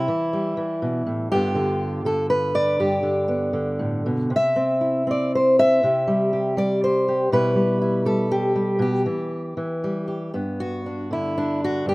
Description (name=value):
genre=folk, solo fingerstyle acoustic guitar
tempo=120 BPM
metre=3/4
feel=rubato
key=G major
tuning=A4 = 439 Hz
part: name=fingerpicked steel-string acoustic guitar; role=solo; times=0.0-11.9 s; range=G2 to E5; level=-20 LUFS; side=equal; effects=slapback echo
room=little or no reverb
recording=recorded outdoors, with no room sound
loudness=-20 LUFS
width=side -22 dB against mid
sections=0.0-10.3 A section; 10.3-11.9 B section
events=none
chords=0.0 C (rootless); 1.3 G7; 4.3 C; 7.3 Em/B; 10.3 G